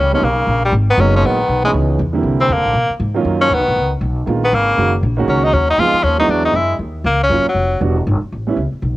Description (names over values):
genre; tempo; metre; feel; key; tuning
jazz, small-group swing and bop; 237 BPM; 4/4; swing 60% on 8ths; Eb minor; A4 = 440 Hz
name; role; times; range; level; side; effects
edgy tenor saxophone; melody; 0.0-7.8 s; Gb3 to F4; -15 LUFS; left 1 dB; cassette tape, plate reverb
trombone with metal mute; second line; 0.0-6.8 s; Bb2 to Ab3; -25 LUFS; right 5 dB; plate reverb
upright bass; bass; 0.0-9.0 s; E1 to B2; -18 LUFS; equal; none
warm concert grand piano; accompaniment; 0.1-8.6 s; D3 to Gb4; -19 LUFS; right 4 dB; none
room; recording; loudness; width
light reverb; home recording on cassette; -13 LUFS; side -17 dB against mid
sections
0.0-6.8 A section; 6.8-9.0 B section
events
none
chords
0.0 Eb7b13 (rootless); 0.7 Abm9; 1.7 Dbm9; 2.2 C9; 2.8 Bmaj9#11; 3.8 Db13; 4.8 Gb69; 5.8 Fm7b5; 6.3 E9; 6.8 Ebm9; 7.8 Em7; 8.3 A9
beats
0.22 0.48 | 0.73 0.98 1.24 1.49 | 1.74 2.00 2.25 2.50 | 2.75 3.01 3.26 3.51 | 3.77 4.02 4.27 4.53 | 4.78 5.03 5.29 5.54 | 5.79 6.04 6.30 6.55 | 6.80 7.06 7.31 7.56 | 7.82 8.07 8.32 8.58 | 8.83